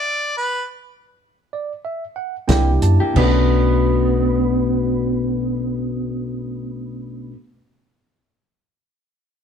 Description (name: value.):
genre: straight-eighth soul blues.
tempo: 87-105 BPM.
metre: 4/4.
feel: swing 55% on 16ths.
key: B minor.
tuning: A4 = 441 Hz.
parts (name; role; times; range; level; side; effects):
warm harmonica; melody; 0.0-0.6 s; B4 to D5; -21 LUFS; equal; overdrive.
bright tine electric piano; accompaniment; 1.5-7.3 s; A3 to A5; -25 LUFS; right 6 dB; none.
mellow electric guitar; stabs; 2.5-7.4 s; B2 to G4; -24 LUFS; left 5 dB; none.
hollow-body short-scale fingered electric bass; bass; 2.5-7.3 s; B1 to F#2; -20 LUFS; equal; none.
warm soul drum kit; drums; 2.5-3.3 s; crash cymbal, hi-hat, kick drum, snare drum; -23 LUFS; right 1 dB; none.
electric guitar through a small old amp; second line; 3.2-7.3 s; B3; -21 LUFS; left 1 dB; none.
room: moderate stone room reverb, RT60 1.2 s.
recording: band playing live in one room.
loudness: -17 LUFS.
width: side -8 dB against mid.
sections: 0.0-3.2 A section; 3.2-5.9 B section.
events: slowing down 0.0-3.2; stop 0.0-2.5; tine electric piano fill 1.2-3.2.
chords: 0.0 Bm (rootless); 2.5 C7; 3.2 Bm7.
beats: 0.05 | 0.63 1.23 1.85 2.49 | 3.17 3.85 4.54 5.23.